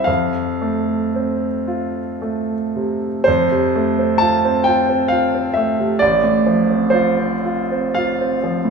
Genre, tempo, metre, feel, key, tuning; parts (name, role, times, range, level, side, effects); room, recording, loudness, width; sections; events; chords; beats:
classical, romantic nocturne for solo piano; 54-68 BPM; 3/4; rubato; F major; A4 = 440 Hz
clear grand piano; solo; 0.0-8.7 s; A1 to A5; -16 LUFS; right 1 dB
wet recital hall reverb, RT60 1.4 s; recorded in a church or concert hall; -16 LUFS; side -5 dB against mid
0.0-3.3 A section; 3.3-8.7 B section
0.1 F; 6.0 F/A
| 0.07 1.15 2.21 | 3.27 4.22 5.11 | 6.01 6.94 7.97